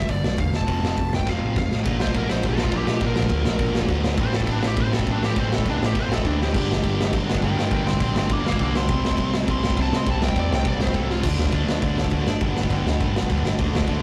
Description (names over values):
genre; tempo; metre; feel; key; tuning
punk rock; 204 BPM; 4/4; straight; unclear; A4 = 440 Hz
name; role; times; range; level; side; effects
high-gain lead guitar; melody; 0.0-11.2 s; D4 to D6; -31 LUFS; equal; distortion
overdriven picked electric bass; bass; 0.0-14.0 s; E1 to C3; -28 LUFS; equal; none
raw garage drum kit; drums; 0.0-13.9 s; crash cymbal, hi-hat, kick drum, snare drum; -26 LUFS; equal; none
sludgy distorted guitar; riff; 0.1-14.0 s; F2 to D4; -31 LUFS; equal; overdrive
tight distorted guitar; riff; 0.1-14.0 s; F2 to F4; -34 LUFS; equal; distortion
room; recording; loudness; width
moderate small room reverb, RT60 0.5 s; rough rehearsal-room recording, tube saturation; -22 LUFS; mono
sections
0.0-1.8 A section; 1.8-11.2 B section; 11.2-14.0 C section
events
drum fill 1.3-1.8, 6.4, 11.1; lead electric guitar solo 1.8-11.2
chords
0.0 G; 0.5 F; 1.8 Bb; 4.2 Am; 6.5 Gm; 8.9 C; 11.2 Dm; 12.3 G